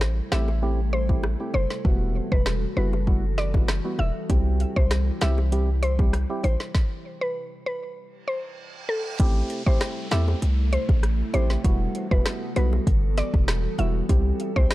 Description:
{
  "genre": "dancehall",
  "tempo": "98 BPM",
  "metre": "4/4",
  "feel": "straight",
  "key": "unclear",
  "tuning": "A4 = 441 Hz",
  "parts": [
    { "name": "mallet-like synth pluck", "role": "melody", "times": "0.0-14.7 s", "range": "A4 to E5", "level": "-31 LUFS", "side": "left 1 dB", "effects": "chorus, tape echo" },
    { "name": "glassy FM pad", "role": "sustained chords", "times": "0.0-14.7 s", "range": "C3 to A4", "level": "-34 LUFS", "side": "left 2 dB", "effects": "ensemble chorus, built-in reverb, sidechain pumping" },
    { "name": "hard-hitting 808-style bass", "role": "bass", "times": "0.0-14.7 s", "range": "E1 to E2", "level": "-23 LUFS", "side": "equal", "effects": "none" },
    { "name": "afro-pop drum kit", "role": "drums", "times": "0.0-14.7 s", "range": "hi-hat, kick drum, rim click, snare drum", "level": "-23 LUFS", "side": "equal", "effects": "none" },
    { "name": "bongos", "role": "percussion", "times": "0.0-14.7 s", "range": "none", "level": "-37 LUFS", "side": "left 5 dB", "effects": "none" },
    { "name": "percussive organ stab", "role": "accompaniment", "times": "0.3-14.7 s", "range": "G3 to G4", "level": "-31 LUFS", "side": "right 2 dB", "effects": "chorus" },
    { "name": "reverse cymbal and downlifter", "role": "sound effects", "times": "8.3-14.1 s", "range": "none", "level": "-40 LUFS", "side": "right 2 dB", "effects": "none" }
  ],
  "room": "digital ambience",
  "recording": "dark, warm production",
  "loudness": "-21 LUFS",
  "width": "side -17 dB against mid",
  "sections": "0.0-9.2 A section; 9.2-14.7 B section",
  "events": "stop 6.7-9.2; reverse cymbal 8.3-9.2",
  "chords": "0.0 Am7; 1.8 Emadd9; 4.3 C; 6.7 N.C.; 9.2 Am7; 11.6 Emadd9; 14.1 C",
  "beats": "0.01 0.62 1.24 | 1.85 2.46 3.07 3.69 | 4.30 4.91 5.52 6.13 | 6.75 7.36 7.97 8.58 | 9.20 9.81 10.42 11.03 | 11.64 12.26 12.87 13.48 | 14.09 14.71"
}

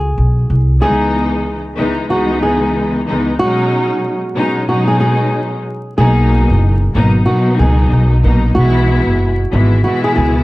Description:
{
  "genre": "hip hop, boom-bap hip-hop",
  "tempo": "93 BPM",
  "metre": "4/4",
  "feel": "swing 61% on 16ths",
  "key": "G# minor",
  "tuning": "A4 = 439 Hz",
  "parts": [
    { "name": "flamenco guitar", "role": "melody", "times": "0.0-10.4 s", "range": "F#4 to G#4", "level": "-18 LUFS", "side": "right 1 dB", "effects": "none" },
    { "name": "upright bass", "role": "bass", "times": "0.0-0.8, 6.0-10.4 s", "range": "F#1 to C#2", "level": "-12 LUFS", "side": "equal", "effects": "none" },
    { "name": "muted studio string section", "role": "accompaniment", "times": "0.8-10.4 s", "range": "C#2 to E4", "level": "-15 LUFS", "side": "left 1 dB", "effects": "cassette tape" }
  ],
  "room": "light reverb",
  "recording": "dark, warm production, vinyl crackle",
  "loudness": "-11 LUFS",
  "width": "side -19 dB against mid",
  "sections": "0.0-10.4 A section",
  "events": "break 0.0-0.8, 0.8-6.0",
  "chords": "0.0 F#sus4 (rootless); 0.8 C#m7; 3.4 B6; 6.0 G#m7; 8.6 E",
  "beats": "0.17 | 0.81 1.46 2.10 2.75 | 3.39 4.04 4.68 5.33 | 5.97 6.62 7.26 7.91 | 8.55 9.20 9.84"
}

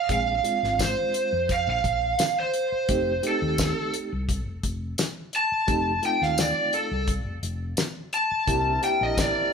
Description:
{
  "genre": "straight-eighth soul blues",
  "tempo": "86 BPM",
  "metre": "4/4",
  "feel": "swing 54% on 16ths",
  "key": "F mixolydian",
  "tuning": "A4 = 438 Hz",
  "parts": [
    { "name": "lead guitar through a small cranked amp", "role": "melody", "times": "0.0-9.5 s", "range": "A4 to A5", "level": "-24 LUFS", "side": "right 1 dB", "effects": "overdrive, analog delay" },
    { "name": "reed electric piano", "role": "accompaniment", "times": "0.1-9.5 s", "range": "Ab3 to Ab4", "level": "-30 LUFS", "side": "right 4 dB", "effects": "overdrive, fast tremolo" },
    { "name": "hollow-body short-scale fingered electric bass", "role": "bass", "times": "0.1-9.3 s", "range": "F1 to F2", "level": "-31 LUFS", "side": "left 1 dB", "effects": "none" },
    { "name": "damped 70s drum kit", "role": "drums", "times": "0.1-9.4 s", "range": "hi-hat, kick drum, snare drum, tambourine", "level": "-28 LUFS", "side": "left 2 dB", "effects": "none" },
    { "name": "warm horn section", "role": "sustained chords", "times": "8.5-9.5 s", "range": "C4 to Bb4", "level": "-35 LUFS", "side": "left 1 dB", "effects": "none" }
  ],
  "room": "wet studio reverb, RT60 0.8 s",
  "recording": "band playing live in one room",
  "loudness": "-22 LUFS",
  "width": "side -6 dB against mid",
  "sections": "0.0-9.5 A section",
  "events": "lead electric guitar solo 0.0-9.5",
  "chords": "0.0 Bb7; 2.9 F7; 8.5 C7",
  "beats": "| 0.09 0.79 1.49 2.19 | 2.88 3.58 4.28 4.98 | 5.68 6.38 7.08 7.78 | 8.48 9.18"
}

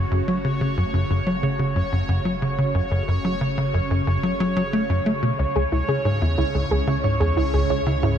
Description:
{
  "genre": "ambient",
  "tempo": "91 BPM",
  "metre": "4/4",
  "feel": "straight",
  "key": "F# minor",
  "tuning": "A4 = 439 Hz",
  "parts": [
    { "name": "phased string machine", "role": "sustained chords", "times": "0.0-8.2 s", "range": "C#3 to C#5", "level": "-28 LUFS", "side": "equal", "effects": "ensemble chorus, phaser" },
    { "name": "tight sequencer bass", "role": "riff", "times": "0.0-8.2 s", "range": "C#2 to A3", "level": "-22 LUFS", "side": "equal", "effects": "wide subtle chorus, tape echo" },
    { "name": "warm sub bass", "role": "bass", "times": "0.0-8.2 s", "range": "F#1 to C#2", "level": "-33 LUFS", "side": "equal", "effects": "none" },
    { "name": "bubbling stepped-filter texture", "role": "texture", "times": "0.0-8.2 s", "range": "C#5", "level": "-28 LUFS", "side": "right 1 dB", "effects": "chorus, built-in reverb" },
    { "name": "soft round pluck", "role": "arpeggios", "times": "5.4-8.2 s", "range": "E4 to E5", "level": "-26 LUFS", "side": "moving between left 6 dB and right 7 dB", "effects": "chorus, auto-pan, tape echo" }
  ],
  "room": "light reverb",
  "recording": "cassette tape",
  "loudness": "-20 LUFS",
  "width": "side -9 dB against mid",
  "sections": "0.0-8.2 A section",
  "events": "fade-in on string machine 0.0-8.2; fade-in on sub bass 0.0-8.2",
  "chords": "0.0 F#m; 5.4 C#m",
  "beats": "| 0.12 0.78 1.44 2.09 | 2.75 3.41 4.07 4.73 | 5.39 6.05 6.71 7.37 | 8.03"
}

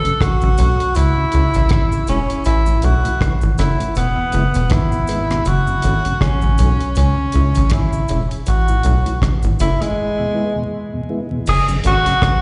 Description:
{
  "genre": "roots reggae",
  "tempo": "80 BPM",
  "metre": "4/4",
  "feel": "swing 57% on 16ths",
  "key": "F# minor",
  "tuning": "A4 = 440 Hz",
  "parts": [
    { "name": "warm tenor saxophone", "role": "melody", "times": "0.0-12.4 s", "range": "G#3 to A4", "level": "-22 LUFS", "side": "equal", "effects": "tape echo, slapback echo" },
    { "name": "mellow tonewheel organ", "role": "accompaniment", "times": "0.0-12.1 s", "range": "E2 to F#4", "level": "-27 LUFS", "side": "equal", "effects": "chorus vibrato, slow rotary speaker, slapback echo" },
    { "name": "tight sequencer bass", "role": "bass", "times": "0.0-12.4 s", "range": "E1 to C#2", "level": "-18 LUFS", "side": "equal", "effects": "none" },
    { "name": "deep reggae drum kit", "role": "drums", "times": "0.0-12.4 s", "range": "crash cymbal, hi-hat, kick drum, rim click", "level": "-24 LUFS", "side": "equal", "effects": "none" },
    { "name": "cabasa", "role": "percussion", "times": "0.4-12.0 s", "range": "none", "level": "-43 LUFS", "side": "equal", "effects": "none" }
  ],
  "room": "light reverb",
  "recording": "live gig heard through the venue's PA, recital hall reverb, vinyl crackle, nothing above 10.7 kHz",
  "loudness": "-17 LUFS",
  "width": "mono",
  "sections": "0.0-11.5 A section",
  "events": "break 10.0-11.5",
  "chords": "0.0 F#m; 1.0 C#m; 2.5 A; 4.0 E; 5.5 F#m; 7.0 C#m; 8.5 A; 10.0 E; 11.5 F#m",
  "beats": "0.20 0.95 1.71 | 2.46 3.21 3.96 4.71 | 5.46 6.21 6.96 7.71 | 8.46 9.22 9.97 10.72 | 11.47 12.22"
}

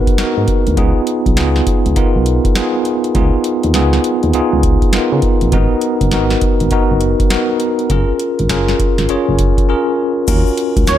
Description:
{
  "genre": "R&B, new jack swing",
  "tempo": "101 BPM",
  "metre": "4/4",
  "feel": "swing 64% on 16ths",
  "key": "unclear",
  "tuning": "A4 = 441 Hz",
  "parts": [
    { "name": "bell-like tine electric piano", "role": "accompaniment", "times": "0.0-11.0 s", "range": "B3 to C#5", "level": "-15 LUFS", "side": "equal", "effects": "fast stereo tremolo" },
    { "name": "booming analog drum machine", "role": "drums", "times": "0.1-11.0 s", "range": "crash cymbal, hi-hat, kick drum, snare drum", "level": "-16 LUFS", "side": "equal", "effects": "none" },
    { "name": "solid FM bass", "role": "bass", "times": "0.4-11.0 s", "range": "F#1 to C#3", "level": "-16 LUFS", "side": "equal", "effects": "none" },
    { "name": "egg shaker", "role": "percussion", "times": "10.3-11.0 s", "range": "none", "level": "-32 LUFS", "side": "left 8 dB", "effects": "none" },
    { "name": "wide unison lead", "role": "melody", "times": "10.9-11.0 s", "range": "C#5", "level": "-12 LUFS", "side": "right 4 dB", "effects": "none" }
  ],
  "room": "moderate plate reverb, RT60 1.6 s, digital ambience",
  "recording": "none",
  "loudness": "-12 LUFS",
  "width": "side -11 dB against mid",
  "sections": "0.0-10.3 A section",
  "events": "break 9.7-10.3",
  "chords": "0.0 G#m7; 0.8 C#7; 5.5 G#m7; 7.9 F#maj9; 10.3 D#m7",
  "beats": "0.18 | 0.77 1.37 1.96 2.56 | 3.15 3.74 4.34 4.93 | 5.53 6.12 6.71 7.31 | 7.90 8.49 9.09 9.68 | 10.28 10.87"
}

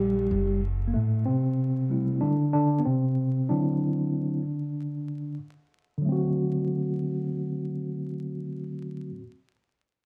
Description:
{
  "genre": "hip hop",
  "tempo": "94 BPM",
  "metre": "4/4",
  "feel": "swing 59% on 16ths",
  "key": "unclear",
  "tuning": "A4 = 440 Hz",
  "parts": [
    { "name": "mellow tine electric piano", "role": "accompaniment", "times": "0.0-9.2 s", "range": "A2 to G4", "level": "-28 LUFS", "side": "equal", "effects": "low-pass filter" },
    { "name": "upright bass", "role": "bass", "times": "0.0-0.9 s", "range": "F#1 to Bb1", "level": "-30 LUFS", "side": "equal", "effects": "none" }
  ],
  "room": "wet studio reverb, RT60 0.6 s",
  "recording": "dark, warm production, vinyl crackle",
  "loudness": "-27 LUFS",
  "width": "mono",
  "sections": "0.0-6.1 A section; 6.1-8.6 B section",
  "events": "tine electric piano solo 0.0-6.1; filter sweep on tine electric piano 0.0-6.1",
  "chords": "0.0 C7(no3) (rootless); 0.9 Am11; 3.5 D7",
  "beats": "0.31 | 0.95 1.58 2.22 2.86 | 3.50 4.14 4.78 5.41 | 6.05 6.69 7.33 7.97"
}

